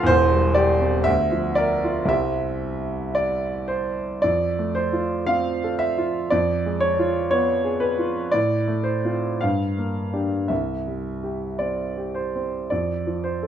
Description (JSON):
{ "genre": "classical, romantic character piece for solo piano", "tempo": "53-62 BPM", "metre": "2/4", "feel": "rubato", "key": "F major", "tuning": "A4 = 439 Hz", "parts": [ { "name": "warm grand piano", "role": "solo", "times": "0.0-13.5 s", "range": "E1 to D6", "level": "-20 LUFS", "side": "right 1 dB", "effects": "none" } ], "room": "moderate large studio reverb, RT60 1.2 s", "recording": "minimal, uncompressed stereo recording", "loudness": "-20 LUFS", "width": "side -9 dB against mid", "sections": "0.0-4.2 A section; 4.2-13.5 B section", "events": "none", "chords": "0.1 C/E; 1.1 Bb/D; 2.1 C; 4.2 F; 6.3 Fdim; 8.3 F/A; 9.4 Gm; 10.5 C; 12.7 F5", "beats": "| 0.09 1.07 | 2.11 3.17 | 4.23 5.28 | 6.32 7.32 | 8.33 9.42 | 10.51 11.61 | 12.70" }